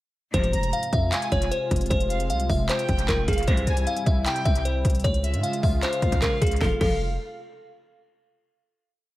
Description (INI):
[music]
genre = hip hop, trap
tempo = 153 BPM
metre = 4/4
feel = half-time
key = F harmonic minor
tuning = A4 = 440 Hz
[part]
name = delicate synth tine bell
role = melody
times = 0.3-7.0 s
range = Ab4 to G5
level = -27 LUFS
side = left 1 dB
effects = chorus, low-pass filter, analog delay
[part]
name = warm analog pad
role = sustained chords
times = 0.3-6.8 s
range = C3 to F4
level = -33 LUFS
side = right 1 dB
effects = chorus
[part]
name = clear studio string section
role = stabs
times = 0.3-0.7, 3.5-3.8, 6.6-7.0 s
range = C2 to F3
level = -32 LUFS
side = left 1 dB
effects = none
[part]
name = hard-hitting 808-style bass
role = bass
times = 0.3-7.2 s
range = F1 to Ab2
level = -25 LUFS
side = equal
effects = none
[part]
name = trap drum kit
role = drums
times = 0.3-6.9 s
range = crash cymbal, handclaps, hi-hat, kick drum, snare drum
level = -26 LUFS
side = equal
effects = none
[part]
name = warm studio violin section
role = second line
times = 0.5-7.0 s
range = E5 to Bb5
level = -34 LUFS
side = right 1 dB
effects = analog delay
[sound]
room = digital ambience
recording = echo-heavy mix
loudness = -21 LUFS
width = side -16 dB against mid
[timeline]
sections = 0.3-6.6 hook; 6.6-8.2 final chord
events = none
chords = 0.3 Fm; 3.5 C; 5.0 Db; 6.6 F